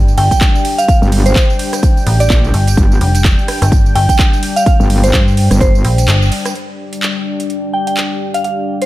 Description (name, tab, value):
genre	bass house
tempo	127 BPM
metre	4/4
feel	swing 58% on 16ths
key	unclear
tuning	A4 = 440 Hz
part	dark analog pad	sustained chords	0.0-8.9 s	G3 to G5	-21 LUFS	left 2 dB	chorus, sidechain pumping
part	metallic FM bass	bass	0.0-6.3 s	F1 to G2	-12 LUFS	equal	tube saturation, sidechain pumping
part	garage drum kit	drums	0.1-8.9 s	handclaps, hi-hat, ride cymbal, rim click, tambourine	-20 LUFS	right 1 dB	overdrive, studio reverb
part	soft synth bell	melody	0.2-8.9 s	C5 to G5	-17 LUFS	right 1 dB	chorus, digital delay
part	electronic kick drum	drums	0.3-5.7 s	none	-12 LUFS	equal	studio reverb
part	metallic wobble bass	bass	1.0-5.8 s	G1 to Bb1	-12 LUFS	equal	distortion, chorus, tube saturation, sidechain pumping
part	warbly tape-like pad	texture	6.9-8.9 s	D4 to G5	-24 LUFS	right 1 dB	chorus, built-in reverb, sidechain pumping
room	little or no reverb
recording	none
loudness	-10 LUFS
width	side -16 dB against mid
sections	0.0-6.6 A section; 6.6-8.9 B section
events	drop 0.0-6.6; kick drops out 6.1-6.6; band accent 6.1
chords	0.0 G5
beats	0.41 | 0.88 1.36 1.83 2.30 | 2.77 3.25 3.72 4.19 | 4.66 5.14 5.61 6.08 | 6.55 7.03 7.50 7.97 | 8.44